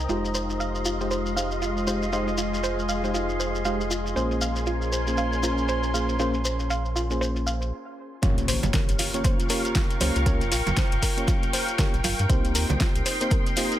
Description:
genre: deep house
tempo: 118 BPM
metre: 4/4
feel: swing 59% on 16ths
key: unclear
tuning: A4 = 440 Hz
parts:
  - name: soft string machine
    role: sustained chords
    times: 0.0-13.8 s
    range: Ab3 to Db6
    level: -32 LUFS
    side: equal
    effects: ensemble chorus, sidechain pumping
  - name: round analog bass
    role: bass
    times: 0.0-13.0 s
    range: F1 to G2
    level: -29 LUFS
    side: equal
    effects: tube saturation, sidechain pumping
  - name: airy breathy pad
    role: texture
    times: 0.0-13.8 s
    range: Db4 to C6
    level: -33 LUFS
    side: equal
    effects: chorus, sidechain pumping
  - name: soft round pluck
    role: arpeggios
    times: 0.1-13.6 s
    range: F4 to F5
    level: -33 LUFS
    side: right 3 dB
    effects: chorus, sidechain pumping, dub echo
  - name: mellow FM electric piano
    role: stabs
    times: 0.1-13.8 s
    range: Ab3 to Db5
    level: -30 LUFS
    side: left 1 dB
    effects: chorus, sidechain pumping, dub echo
  - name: deep house drum kit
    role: drums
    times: 0.1-13.8 s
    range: hi-hat, snare drum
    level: -30 LUFS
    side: left 1 dB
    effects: overdrive, low-pass filter on hats, small room ambience, low-pass filter on snare
  - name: shekere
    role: percussion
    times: 0.1-13.8 s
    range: none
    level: -34 LUFS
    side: left 2 dB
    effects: none
  - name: electronic kick drum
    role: drums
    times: 8.2-13.4 s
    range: none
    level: -24 LUFS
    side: equal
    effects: overdrive, small room ambience
  - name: impact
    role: sound effects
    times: 8.2-10.3 s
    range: none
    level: -33 LUFS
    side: equal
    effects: none
  - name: congas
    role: percussion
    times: 8.6-13.4 s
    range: none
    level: -32 LUFS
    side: right 3 dB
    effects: sidechain pumping on perc
room: light reverb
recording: none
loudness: -22 LUFS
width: side -12 dB against mid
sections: 0.0-8.2 A section; 8.2-13.8 B section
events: break 7.7-8.2; drop 8.2-13.8; impact 8.2-10.3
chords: 0.1 Fm7; 4.2 Bbm9; 8.2 Gm7b5; 12.3 Cm7

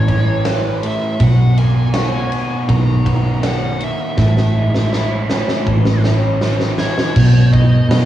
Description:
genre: rock, shoegaze and dream pop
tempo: 80 BPM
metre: 4/4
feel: straight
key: unclear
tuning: A4 = 436 Hz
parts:
  - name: biting lead guitar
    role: melody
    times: 0.0-8.1 s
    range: C#5 to A#5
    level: -26 LUFS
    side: equal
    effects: overdrive, cassette tape, analog delay
  - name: crunchy overdriven guitar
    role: riff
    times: 0.0-8.1 s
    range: A2 to G#4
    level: -19 LUFS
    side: equal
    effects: lush chorus, cassette tape
  - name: vintage muted picked electric bass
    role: bass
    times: 0.0-8.1 s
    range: A1 to B2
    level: -15 LUFS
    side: right 1 dB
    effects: none
  - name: huge arena drum kit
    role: drums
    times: 0.1-8.1 s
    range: crash cymbal, hi-hat, kick drum, ride cymbal, snare drum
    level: -19 LUFS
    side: equal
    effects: cassette tape
room: small room ambience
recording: home recording on cassette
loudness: -13 LUFS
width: side -12 dB against mid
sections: 0.0-7.2 A section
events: drum fill 4.2-7.2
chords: 0.0 Amaj7; 1.2 Bmaj7; 4.2 Amaj7; 7.2 B

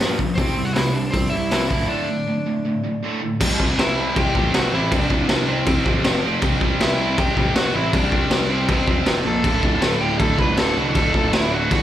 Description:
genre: punk rock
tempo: 159 BPM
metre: 4/4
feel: straight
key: unclear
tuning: A4 = 441 Hz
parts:
  - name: overdriven semi-hollow guitar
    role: melody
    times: 0.0-11.8 s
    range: Bb3 to B5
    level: -25 LUFS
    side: equal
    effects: none
  - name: distorted electric guitar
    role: riff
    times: 0.0-11.8 s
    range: D2 to C4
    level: -28 LUFS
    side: left 10 dB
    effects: distortion, slapback echo
  - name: distorted electric guitar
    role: riff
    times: 0.0-11.8 s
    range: D2 to C4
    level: -26 LUFS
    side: right 8 dB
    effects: distortion, slapback echo
  - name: fuzz picked electric bass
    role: bass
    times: 0.0-11.8 s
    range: D1 to G2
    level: -25 LUFS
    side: equal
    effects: overdrive
  - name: raw garage drum kit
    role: drums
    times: 0.0-11.8 s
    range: crash cymbal, hi-hat, kick drum, snare drum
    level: -21 LUFS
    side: equal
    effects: none
  - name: heavy high-gain guitar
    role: riff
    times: 3.4-11.8 s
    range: D2 to C4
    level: -27 LUFS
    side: right 2 dB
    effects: distortion, slapback echo
room: small room reverb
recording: live gig heard through the venue's PA, club reverb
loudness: -17 LUFS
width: side -12 dB against mid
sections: 0.0-3.4 A section; 3.4-11.8 B section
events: break 1.9-3.4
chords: 0.4 C; 1.7 D5; 3.4 C; 6.0 F5; 6.4 C; 9.1 F5; 9.3 Bb5; 9.4 D

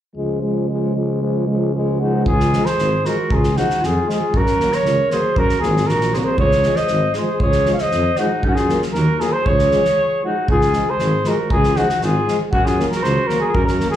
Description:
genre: balkan folk, Balkan brass band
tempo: 117 BPM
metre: 2/4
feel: straight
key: Db major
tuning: A4 = 440 Hz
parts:
  - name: mellow French horn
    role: accompaniment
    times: 0.2-13.9 s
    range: Ab3 to Bb3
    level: -24 LUFS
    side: left 4 dB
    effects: slapback echo
  - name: mellow euphonium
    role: accompaniment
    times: 0.2-13.9 s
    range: F3 to Gb3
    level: -28 LUFS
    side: right 4 dB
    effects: slapback echo
  - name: mellow tuba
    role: bass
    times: 0.2-13.8 s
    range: Ab1 to Gb2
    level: -20 LUFS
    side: equal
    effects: none
  - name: mellow flugelhorn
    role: melody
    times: 2.0-14.0 s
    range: Gb4 to F5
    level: -19 LUFS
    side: equal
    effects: slapback echo
  - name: warm clarinet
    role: second line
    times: 2.0-13.9 s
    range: Db4 to Db5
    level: -26 LUFS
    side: equal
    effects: slapback echo
  - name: loose indie drum kit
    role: percussion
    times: 2.3-14.0 s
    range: kick drum, snare drum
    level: -23 LUFS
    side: equal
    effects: none
room: light reverb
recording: live gig heard through the venue's PA, club reverb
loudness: -15 LUFS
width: side -11 dB against mid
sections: 0.2-2.3 A section; 2.3-10.5 B section; 10.5-14.0 B section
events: break 10.0-10.5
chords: 0.2 Db; 4.3 Gb; 6.4 Db; 8.4 Gb; 9.5 Db; 12.5 Gb

